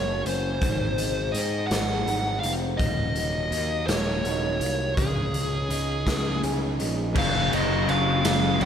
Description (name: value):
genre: quiet-loud alternative rock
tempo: 55 BPM (dotted quarters)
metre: 6/8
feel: straight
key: unclear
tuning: A4 = 439 Hz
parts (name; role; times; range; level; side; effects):
- high-gain lead guitar; melody; 0.0-8.7 s; Ab4 to Gb5; -28 LUFS; left 1 dB; distortion
- electric guitar through a small old amp; arpeggios; 0.0-7.2 s; Eb2 to Ab4; -32 LUFS; equal; phaser, slapback echo
- fuzz picked electric bass; bass; 0.0-8.7 s; Eb1 to Ab2; -29 LUFS; equal; overdrive
- raw garage drum kit; drums; 0.3-8.7 s; crash cymbal, hi-hat, kick drum, ride cymbal, snare drum; -28 LUFS; equal; none
- distorted electric guitar; riff; 7.1-8.7 s; Gb2 to Gb3; -30 LUFS; right 12 dB; distortion
- raw garage guitar; riff; 7.1-8.7 s; Gb2 to Gb3; -30 LUFS; right 2 dB; overdrive, slapback echo
- thick fuzz guitar; riff; 7.2-8.7 s; Gb2 to Gb3; -27 LUFS; left 10 dB; distortion
room: light reverb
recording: none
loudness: -22 LUFS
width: side -8 dB against mid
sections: 0.0-7.2 A section; 7.2-8.7 B section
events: none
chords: 0.0 Gb; 0.6 Ab7; 2.8 Ebm7; 5.0 Dbsus2; 7.2 Gbmaj7(no3)